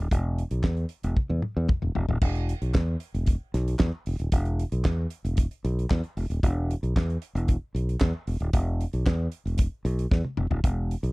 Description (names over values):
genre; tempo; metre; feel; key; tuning
disco; 114 BPM; 4/4; straight; unclear; A4 = 441 Hz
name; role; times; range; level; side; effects
fingered electric bass; bass; 0.0-11.1 s; D#1 to E2; -26 LUFS; equal; none
damped 70s drum kit; drums; 0.1-11.1 s; crash cymbal, handclaps, hi-hat, kick drum, snare drum, toms; -24 LUFS; equal; none
room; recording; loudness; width
little or no reverb; dry, close 1970s-style studio recording, faint mains hum; -24 LUFS; side -24 dB against mid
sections
0.0-2.2 A section; 2.2-11.1 B section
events
drum fill 1.2-2.2, 10.1-10.6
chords
none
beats
| 0.11 0.64 1.17 1.70 | 2.22 2.75 3.27 3.80 | 4.33 4.85 5.38 5.90 | 6.43 6.96 7.48 8.01 | 8.53 9.06 9.59 10.11 | 10.64